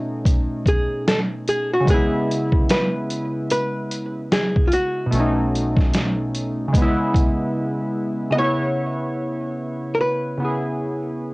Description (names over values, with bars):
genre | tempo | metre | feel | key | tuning
lo-fi hip hop | 74 BPM | 4/4 | swing 60% on 16ths | C# minor | A4 = 435 Hz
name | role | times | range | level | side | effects
archtop guitar, miked and amplified | melody | 0.0-11.3 s | E#4 to D#5 | -23 LUFS | equal | low-pass filter, cassette tape
warm analog keys | accompaniment | 0.0-11.3 s | B2 to C#5 | -23 LUFS | equal | chorus, cassette tape, low-pass filter
trip hop sampler-style drum kit | drums | 0.3-7.4 s | hi-hat, kick drum, snare drum | -19 LUFS | equal | cassette tape
deep dub fingered electric bass | bass | 5.1-7.5 s | B1 | -27 LUFS | equal | none
room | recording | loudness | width
light reverb | home recording on cassette | -19 LUFS | side -24 dB against mid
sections
0.0-8.4 A section; 8.4-11.3 B section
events
break 0.0-5.1, 7.6-8.4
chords
0.0 B9; 1.9 C#m7; 5.1 B9; 6.7 C#m7